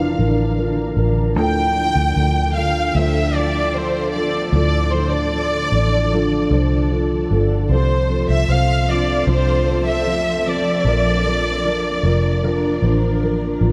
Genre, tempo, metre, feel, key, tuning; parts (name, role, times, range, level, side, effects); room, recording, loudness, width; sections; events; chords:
pop ballad; 76 BPM; 4/4; straight; D minor; A4 = 441 Hz
warm symphonic violin section; melody; 0.0-12.8 s; C5 to G5; -24 LUFS; equal; delay
dark upright piano; accompaniment; 0.0-13.7 s; A2 to C5; -25 LUFS; equal; lush chorus
granular cloud pad; sustained chords; 0.0-13.7 s; D3 to Bb4; -28 LUFS; equal; built-in reverb, subtle chorus
vintage muted fingered electric bass; bass; 0.0-13.7 s; F1 to D2; -22 LUFS; equal
moderate huge ambient reverb, RT60 6.1 s; dreamy mix soaked in reverb; -18 LUFS; mono
0.0-13.7 A section
0.0 Bb; 1.4 Dm; 7.7 F/C; 10.9 Bb